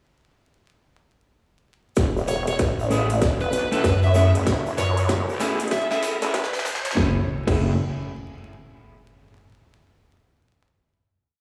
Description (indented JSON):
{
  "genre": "glitch hop",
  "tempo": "96 BPM",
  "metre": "4/4",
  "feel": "swing 62% on 16ths",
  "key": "F# minor",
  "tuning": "A4 = 442 Hz",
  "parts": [
    { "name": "wobble bass", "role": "bass", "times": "2.0-7.8 s", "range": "F#1 to F#2", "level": "-27 LUFS", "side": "equal", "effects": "chorus, tube saturation, high-pass filter" },
    { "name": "dubstep drum kit", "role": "drums", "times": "2.0-7.6 s", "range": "crash cymbal, hi-hat, snare drum", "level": "-34 LUFS", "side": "equal", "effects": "high-pass filter on snare, small room ambience, high-pass filter on hats, high-pass filter on cymbals" },
    { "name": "electronic kick drum", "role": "drums", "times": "2.0-7.6 s", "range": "none", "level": "-26 LUFS", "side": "equal", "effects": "distortion, small room ambience" },
    { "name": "tube shaker", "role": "percussion", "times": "2.0-6.9 s", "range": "none", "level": "-42 LUFS", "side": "equal", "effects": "none" },
    { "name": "riser and impact", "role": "sound effects", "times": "3.4-9.5 s", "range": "none", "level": "-35 LUFS", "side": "equal", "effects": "none" },
    { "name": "vowel-sweep wobble bass", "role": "bass", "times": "2.2-6.5 s", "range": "E1 to F#2", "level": "-24 LUFS", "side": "equal", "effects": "chorus" },
    { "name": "fuzz lead guitar", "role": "melody", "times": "2.3-6.0 s", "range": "B4 to E5", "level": "-30 LUFS", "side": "equal", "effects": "distortion, tape echo" },
    { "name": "electric guitar at the edge of break-up", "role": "stabs", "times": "2.9-7.7 s", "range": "A3 to A4", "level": "-30 LUFS", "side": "equal", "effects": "sidechain pumping, low-pass filter, tape echo" }
  ],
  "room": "moderate plate reverb, RT60 1.9 s, digital ambience",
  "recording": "played on a big sound system in a bare room, stone room reverb, vinyl crackle, high-pass filter, small room ambience",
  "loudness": "-22 LUFS",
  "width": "mono",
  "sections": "2.0-7.0 build; 7.0-9.5 final chord",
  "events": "build-up 2.0-7.0; drum fill 2.0-7.0; filter sweep on clean electric guitar 2.0-7.0; filter sweep 2.0-7.0; riser 3.4-7.0",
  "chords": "2.0 F#m9",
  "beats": "| 1.97 2.60 3.22 3.85 | 4.47 5.10 5.72 6.35 | 6.97 7.60 8.22 8.85"
}